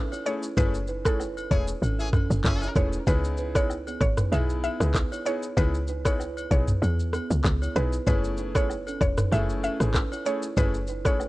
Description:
afrobeats; 96 BPM; 4/4; swing 55% on 16ths; A4 = 445 Hz
woody log drum bass; bass; 0.0-11.3 s; E1 to E2; -27 LUFS; equal; tube saturation
kalimba; riff; 0.1-11.3 s; B3 to C#5; -35 LUFS; right 5 dB; analog delay
afro-pop drum kit; drums; 0.1-11.3 s; handclaps, kick drum, rim click, shaker, toms; -25 LUFS; equal; vintage 12-bit sampler grit
agogo bells and woodblock; percussion; 0.1-11.3 s; -41 LUFS; left 4 dB
mallet-like synth pluck; melody; 0.3-11.2 s; A4 to E5; -31 LUFS; right 1 dB; chorus, analog delay
clear grand piano; accompaniment; 0.3-11.2 s; A3 to G#4; -33 LUFS; left 3 dB
clear horn section; second line; 1.5-2.7 s; C#4 to G#4; -37 LUFS; left 2 dB; analog delay
small room ambience; dry, gritty hardware recording, cassette tape; -23 LUFS; side -18 dB against mid
0.0-11.3 A section
band accent 0.6-3.1
0.0 F#m9; 3.1 C#m7; 8.1 F#m9

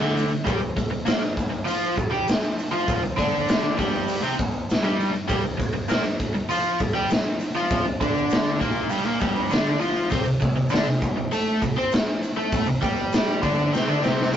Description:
garage rock duo or trio; 100 BPM; 4/4; straight; A4 = 439 Hz
overdriven electric guitar; riff; 0.0-14.4 s; D2 to C5; -23 LUFS; equal
tube shaker; percussion; 0.0-14.4 s; -49 LUFS; right 5 dB
raw garage drum kit; drums; 0.2-14.3 s; hi-hat, kick drum, snare drum; -24 LUFS; equal
light reverb; rough rehearsal-room recording, tube saturation, nothing above 7.6 kHz; -21 LUFS; side -9 dB against mid
0.0-14.4 A section
drum fill 13.7-14.4
0.5 G5; 10.1 C5

